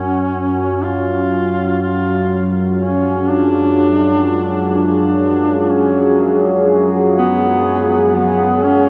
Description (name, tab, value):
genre	dark ambient drone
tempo	62 BPM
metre	4/4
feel	straight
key	unclear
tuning	A4 = 443 Hz
part	warm duduk	melody	0.0-8.9 s	B3 to E#4	-19 LUFS	equal	tape echo
part	deep dark ambient pad	sustained chords	1.9-8.9 s	F#3 to C#5	-20 LUFS	equal	chorus, built-in reverb
part	analog drone	drone	0.0-8.9 s	F#2 to F#3	-20 LUFS	equal	chorus
room	wet huge ambient reverb, RT60 7.6 s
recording	worn, warbling old tape, cassette tape, warbly pitch drift, studio ambience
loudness	-15 LUFS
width	mono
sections	0.0-8.9 A section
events	none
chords	0.0 C#/F#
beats	0.84 1.82 | 2.80 3.77 4.74 5.71 | 6.67 7.64 8.61